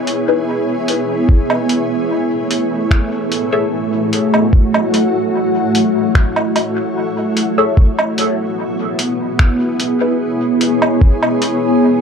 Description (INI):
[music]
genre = ambient dub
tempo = 74 BPM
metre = 4/4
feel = straight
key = C# minor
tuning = A4 = 440 Hz
[part]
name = granular cloud pad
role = sustained chords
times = 0.0-12.0 s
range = A3 to C#5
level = -15 LUFS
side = equal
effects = built-in reverb
[part]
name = lo-fi sampler-style drum kit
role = drums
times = 0.1-11.6 s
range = finger snaps, hi-hat, woodblock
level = -20 LUFS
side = right 1 dB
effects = overdrive, dub echo
[part]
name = filtered dub chord stab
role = stabs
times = 0.3-10.3 s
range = D#4 to E5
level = -19 LUFS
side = left 4 dB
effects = phaser, wide subtle chorus, dub echo
[part]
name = electronic kick drum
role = drums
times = 1.3-11.2 s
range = none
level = -10 LUFS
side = equal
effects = overdrive
[sound]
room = light reverb, digital ambience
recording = dark, warm production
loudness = -13 LUFS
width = side -6 dB against mid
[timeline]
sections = 0.0-7.8 A section; 7.8-12.0 B section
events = none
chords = 0.0 C#m7; 1.3 F#m7; 7.8 C#m7